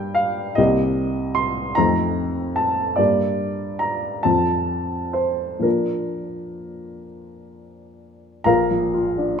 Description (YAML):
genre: classical, romantic character piece for solo piano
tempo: 41-51 BPM (dotted quarters)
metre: 6/8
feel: rubato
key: Bb major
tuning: A4 = 440 Hz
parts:
  - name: warm baby grand piano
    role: solo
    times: 0.0-9.4 s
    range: Bb1 to C6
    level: -19 LUFS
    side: equal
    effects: none
room: moderate recital hall reverb, RT60 1.6 s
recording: none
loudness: -19 LUFS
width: side -7 dB against mid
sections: 0.0-8.5 A section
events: none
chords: 0.0 Gm; 0.6 Cm7; 1.8 F7; 3.0 Gm; 4.2 F; 5.6 Bb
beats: | 0.58 1.77 | 2.98 4.25 | 5.65 7.06 | 8.47